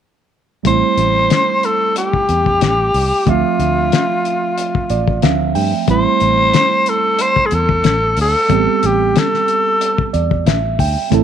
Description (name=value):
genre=straight-eighth soul blues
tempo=92 BPM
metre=4/4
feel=swing 54% on 16ths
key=A minor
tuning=A4 = 444 Hz
part: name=mellow reed electric piano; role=accompaniment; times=0.6-11.2 s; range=F3 to G5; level=-19 LUFS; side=right 14 dB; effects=none
part: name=growling tenor saxophone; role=melody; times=0.7-10.2 s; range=F4 to C5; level=-15 LUFS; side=left 1 dB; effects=none
part: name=fingered electric bass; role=bass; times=0.7-11.2 s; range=A1 to G2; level=-18 LUFS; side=equal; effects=none
part: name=cloth-damped thuddy drum kit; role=drums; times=0.7-11.2 s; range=hi-hat, kick drum, snare drum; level=-19 LUFS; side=left 6 dB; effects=none
room=moderate spring reverb, RT60 2.0 s, studio reverb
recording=1960s-style stereo with parts hard left and right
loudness=-12 LUFS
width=side -8 dB against mid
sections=0.7-11.1 A section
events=reed electric piano fill 4.6-5.9, 9.8-11.1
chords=0.7 Am7; 3.3 Dm7; 5.9 Am7